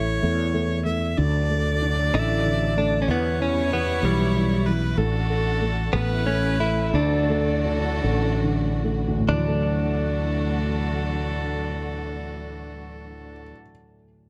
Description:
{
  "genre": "six-eight pop ballad",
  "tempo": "45-64 BPM (dotted quarters)",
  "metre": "6/8",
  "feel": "straight",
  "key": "D major",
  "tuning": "A4 = 440 Hz",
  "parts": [
    { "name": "direct-recorded clean electric guitar", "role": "melody", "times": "0.0-13.5 s", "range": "G3 to E4", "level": "-29 LUFS", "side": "equal", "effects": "dub echo" },
    { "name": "bright viola", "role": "second line", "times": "0.0-13.5 s", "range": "A4 to E5", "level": "-33 LUFS", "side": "equal", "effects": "none" },
    { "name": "felt-muted upright piano", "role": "accompaniment", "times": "0.0-14.3 s", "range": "D2 to A4", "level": "-31 LUFS", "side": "equal", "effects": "dub echo" },
    { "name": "fretless electric bass", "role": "bass", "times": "0.0-13.5 s", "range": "A1 to E2", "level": "-27 LUFS", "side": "equal", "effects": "analog chorus" },
    { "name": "warm studio string section", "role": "sustained chords", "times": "1.2-13.5 s", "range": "E3 to F#4", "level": "-35 LUFS", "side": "equal", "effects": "none" }
  ],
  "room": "light reverb, small room ambience",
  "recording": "echo-heavy mix",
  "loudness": "-23 LUFS",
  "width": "mono",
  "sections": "0.0-9.3 A section; 9.3-14.3 B section",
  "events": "slowing down 5.0-9.3",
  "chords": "0.0 A; 1.2 D; 3.1 Em; 5.0 D/A; 5.9 A; 6.9 Dadd9",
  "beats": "0.23 | 1.18 2.14 | 3.08 4.03 | 4.97 5.93 | 6.94 8.04 | 9.28 10.60 | 11.91 13.22"
}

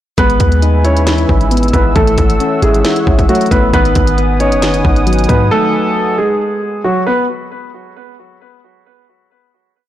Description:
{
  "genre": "hip hop, trap",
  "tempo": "135 BPM",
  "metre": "4/4",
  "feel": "half-time",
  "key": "G# phrygian",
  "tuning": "A4 = 438 Hz",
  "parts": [
    { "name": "dark concert grand piano", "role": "melody", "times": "0.2-7.2 s", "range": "F#3 to C#5", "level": "-15 LUFS", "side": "equal", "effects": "ping-pong delay" },
    { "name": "soft electric-piano-like synth keys", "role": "accompaniment", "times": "0.2-6.4 s", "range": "D#3 to E4", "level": "-17 LUFS", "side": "left 2 dB", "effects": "chorus" },
    { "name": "dark analog pad", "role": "sustained chords", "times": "0.2-7.3 s", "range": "B4 to E6", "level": "-21 LUFS", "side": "right 1 dB", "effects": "chorus" },
    { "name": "clean 808-style bass", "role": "bass", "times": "0.2-5.5 s", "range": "F#1 to G#2", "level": "-14 LUFS", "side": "equal", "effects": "none" },
    { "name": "trap drum kit", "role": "drums", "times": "0.2-5.4 s", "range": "hi-hat, kick drum, snare drum", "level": "-15 LUFS", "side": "equal", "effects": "none" }
  ],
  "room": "light reverb",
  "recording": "blown-out, overdriven recording, overdrive",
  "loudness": "-10 LUFS",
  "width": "side -12 dB against mid",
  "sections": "0.2-7.3 hook",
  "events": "none",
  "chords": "0.2 Emaj7/G#; 2.0 F#m7/G#; 3.7 G#m7",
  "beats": "| 0.18 0.62 1.07 1.51 | 1.96 2.40 2.85 3.29 | 3.73 4.18 4.62 5.07 | 5.51 5.96 6.40 6.84"
}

